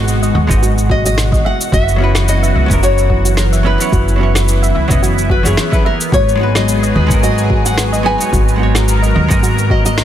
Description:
sunset chillout; 109 BPM; 4/4; swing 55% on 16ths; G# minor; A4 = 439 Hz
nylon-string guitar; melody; 0.0-10.0 s; G#4 to G#5; -20 LUFS; left 2 dB; tape echo
vintage hollow-body jazz guitar; accompaniment; 0.0-9.5 s; F#3 to D#5; -20 LUFS; moving between left 5 dB and right 5 dB; auto-pan, tape echo
lush unison pad; sustained chords; 0.0-10.0 s; B2 to A#4; -20 LUFS; equal; chorus, phaser
upright bass; bass; 0.0-10.0 s; F#1 to D#2; -14 LUFS; equal
electronic shaker and snare drum; drums; 0.1-10.0 s; -21 LUFS; equal
soft round pluck; arpeggios; 0.2-9.9 s; F#4 to E5; -23 LUFS; right 3 dB; chorus, tape echo
electronic kick drum; drums; 0.5-9.8 s; -16 LUFS; equal; overdrive
light reverb; dense, heavily limited modern master; -10 LUFS; side -11 dB against mid
0.0-10.0 A section
0.0 G#m7; 1.4 F#7sus4; 6.1 G#m7
0.07 0.62 1.17 | 1.72 2.27 2.82 3.37 | 3.92 4.47 5.03 5.58 | 6.13 6.68 7.23 7.78 | 8.33 8.88 9.43 9.98

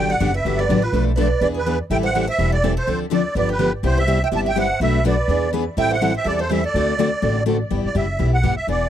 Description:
acoustic string swing (jazz manouche); 248 BPM; 4/4; swing 55% on 8ths; G major; A4 = 440 Hz
musette accordion; melody; 0.0-8.9 s; B4 to A5; -22 LUFS; right 2 dB; tape echo
picked steel-string acoustic guitar; second line; 0.0-7.4 s; F4 to E5; -26 LUFS; right 7 dB
picked plugged-in steel-string acoustic guitar; accompaniment; 0.0-8.9 s; B2 to B4; -25 LUFS; right 4 dB
picked steel-string acoustic guitar; accompaniment; 0.0-8.9 s; B2 to A4; -24 LUFS; left 11 dB
upright bass; bass; 0.0-8.9 s; E1 to E2; -22 LUFS; equal
light reverb; dry, close 1970s-style studio recording; -17 LUFS; side -10 dB against mid
0.0-7.7 A section; 7.7-8.9 B section
accordion solo 7.7-8.9
0.0 Gmaj7; 0.9 Bm7b5; 1.4 E7; 1.9 Am7; 2.9 Dm7; 3.4 G7; 3.8 Cmaj7; 4.8 Bm7; 5.3 E7; 5.8 Am7; 6.7 D7; 7.7 G6
0.20 0.45 0.69 | 0.93 1.17 1.41 1.66 | 1.90 2.14 2.38 2.62 | 2.87 3.11 3.35 3.59 | 3.83 4.08 4.32 4.56 | 4.80 5.04 5.29 5.53 | 5.77 6.01 6.25 6.50 | 6.74 6.98 7.22 7.46 | 7.71 7.95 8.19 8.43 | 8.67

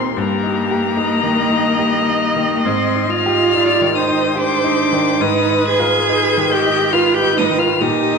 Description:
classical, slow romantic movement for piano quartet; 71 BPM; 3/4; uneven beats, rubato; A4 = 441 Hz
rich violin; melody; 0.0-8.2 s; Bb5 to Ab6; -20 LUFS; left 8 dB
rich cello; second line; 0.0-8.2 s; Bb3 to Ab4; -18 LUFS; right 4 dB
bright grand piano; accompaniment; 0.0-8.2 s; Eb2 to G4; -21 LUFS; left 3 dB
warm viola; accompaniment; 0.0-8.2 s; G4 to Eb5; -20 LUFS; right 1 dB
wet recital hall reverb, RT60 1.6 s; dark, warm production; -13 LUFS; side -5 dB against mid
0.0-8.2 A section
0.2 Eb/G; 2.6 Abmaj7; 5.2 Fm7b5/Ab
| 0.18 0.97 1.79 | 2.65 3.54 4.36 | 5.22 6.10 6.94 | 7.83

